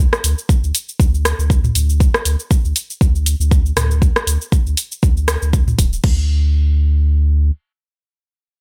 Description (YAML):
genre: afro house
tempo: 119 BPM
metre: 4/4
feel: swing 56% on 16ths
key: unclear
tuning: A4 = 439 Hz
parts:
  - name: warm sub bass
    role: bass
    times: 0.0-7.5 s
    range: D1 to D2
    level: -18 LUFS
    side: equal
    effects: sidechain pumping
  - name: afro-pop drum kit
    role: drums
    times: 0.1-6.1 s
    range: crash cymbal, hi-hat, rim click, shaker, toms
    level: -22 LUFS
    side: equal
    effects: studio ambience
  - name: electronic kick drum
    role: drums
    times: 0.5-6.2 s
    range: none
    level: -17 LUFS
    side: equal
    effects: studio ambience
room: little or no reverb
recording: none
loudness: -16 LUFS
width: mono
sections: 0.0-6.0 A section; 6.0-8.6 B section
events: drop 0.0-6.0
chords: none